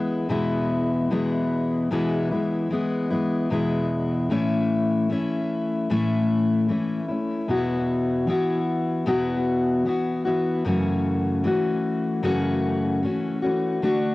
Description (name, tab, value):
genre	pop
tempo	76 BPM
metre	4/4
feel	straight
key	unclear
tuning	A4 = 442 Hz
part	fingerpicked steel-string acoustic guitar	solo	0.0-14.1 s	E2 to F#4	-21 LUFS	left 1 dB	tape echo
room	light reverb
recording	home recording on cassette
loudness	-21 LUFS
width	side -19 dB against mid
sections	0.0-1.1 A section; 1.1-4.3 B section; 4.3-14.1 C section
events	none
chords	0.0 E; 4.3 A; 7.5 Esus2; 10.7 F#m7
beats	0.29 | 1.11 1.92 2.71 3.50 | 4.30 5.10 5.90 6.70 | 7.49 8.28 9.07 9.86 | 10.65 11.44 12.23 13.03 | 13.83